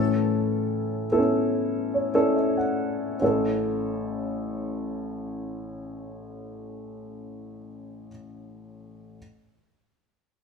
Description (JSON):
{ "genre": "pop", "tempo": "70-76 BPM", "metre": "4/4", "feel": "straight", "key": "A major", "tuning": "A4 = 437 Hz", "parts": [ { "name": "sitar", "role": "melody", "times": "0.0-2.3 s", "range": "A4", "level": "-38 LUFS", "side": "right 3 dB", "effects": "none" }, { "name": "dark upright piano", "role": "accompaniment", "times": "0.0-9.2 s", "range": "A1 to F#5", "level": "-25 LUFS", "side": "left 1 dB", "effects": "none" } ], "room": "wet large studio reverb, RT60 1.2 s", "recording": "band playing live in one room", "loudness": "-23 LUFS", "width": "side -5 dB against mid", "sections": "0.0-3.2 A section; 3.2-6.7 B section", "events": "slowing down 0.0-3.2; upright piano fill 1.5-3.2", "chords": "0.0 A" }